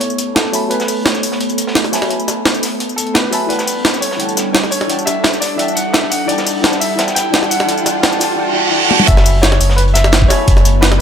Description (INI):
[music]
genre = liquid drum and bass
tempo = 172 BPM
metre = 4/4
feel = straight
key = F# phrygian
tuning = A4 = 440 Hz
[part]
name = clear baby grand piano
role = melody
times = 0.0-11.0 s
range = A4 to G5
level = -21 LUFS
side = equal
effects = low-pass filter, digital delay
[part]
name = deep mellow chord stab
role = accompaniment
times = 0.0-11.0 s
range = D4 to B5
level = -21 LUFS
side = left 1 dB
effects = chorus, ping-pong delay
[part]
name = ethereal airy pad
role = sustained chords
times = 0.0-11.0 s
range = G3 to B4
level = -22 LUFS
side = right 1 dB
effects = ensemble chorus, built-in reverb
[part]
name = sub bass with octave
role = bass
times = 0.0-11.0 s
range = E1 to C#2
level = -12 LUFS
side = equal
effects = tube saturation, high-pass filter
[part]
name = crunchy breakbeat drum kit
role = drums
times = 0.0-11.0 s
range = hi-hat, snare drum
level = -24 LUFS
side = equal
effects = high-pass filter on hats, high-pass filter on snare, high-pass filter on room
[part]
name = jungle sampler-style drum kit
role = drums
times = 0.0-11.0 s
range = hi-hat, snare drum, tambourine, toms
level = -16 LUFS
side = equal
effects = none
[part]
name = riser and reverse cymbal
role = sound effects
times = 2.8-9.1 s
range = none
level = -21 LUFS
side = right 3 dB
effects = none
[part]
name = electronic kick drum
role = drums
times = 9.1-10.5 s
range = none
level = -12 LUFS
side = equal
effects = overdrive
[sound]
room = light reverb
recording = none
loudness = -12 LUFS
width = side -8 dB against mid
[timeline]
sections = 0.0-9.1 A section; 9.1-11.0 B section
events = build-up 0.0-9.1; filter sweep on ambient pad 0.0-9.1; filter sweep on grand piano 0.0-9.1; riser 2.8-9.1; reverse cymbal 8.4-9.1; drum fill 8.9; drop 9.1-11.0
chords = 0.0 F#m11; 3.5 Em11; 9.1 F#m11